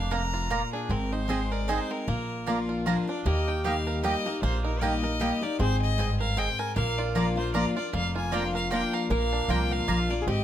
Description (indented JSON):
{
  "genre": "bluegrass",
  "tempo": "154 BPM",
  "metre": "3/4",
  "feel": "swing 56% on 8ths",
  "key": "Bb mixolydian",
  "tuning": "A4 = 440 Hz",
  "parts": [
    { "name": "bluegrass banjo", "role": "melody", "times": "0.0-10.4 s", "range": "Bb3 to Bb4", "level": "-35 LUFS", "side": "right 6 dB", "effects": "slapback echo, plate reverb" },
    { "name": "clear fiddle", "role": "melody", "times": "0.0-10.4 s", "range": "Ab4 to Bb5", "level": "-33 LUFS", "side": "left 3 dB", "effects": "plate reverb" },
    { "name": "picked steel-string acoustic guitar", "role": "accompaniment", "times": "0.0-10.4 s", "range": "F2 to Ab4", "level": "-31 LUFS", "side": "left 3 dB", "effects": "none" },
    { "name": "upright bass", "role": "bass", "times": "0.0-10.4 s", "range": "F1 to Eb2", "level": "-29 LUFS", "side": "equal", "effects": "none" },
    { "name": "mandolin", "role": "stabs", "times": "0.1-10.0 s", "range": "Bb3 to Bb5", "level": "-31 LUFS", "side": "right 4 dB", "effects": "none" },
    { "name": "lap resonator guitar", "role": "second line", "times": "3.3-10.4 s", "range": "G4 to Bb4", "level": "-35 LUFS", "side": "equal", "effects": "none" }
  ],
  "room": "light reverb",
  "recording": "close, detailed microphones",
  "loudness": "-25 LUFS",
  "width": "side -11 dB against mid",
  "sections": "0.0-3.3 A section; 3.3-10.4 B section",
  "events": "none",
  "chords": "0.0 Bb; 0.9 Ab; 2.1 Bb; 3.3 Eb; 5.6 Ab; 6.8 Bb"
}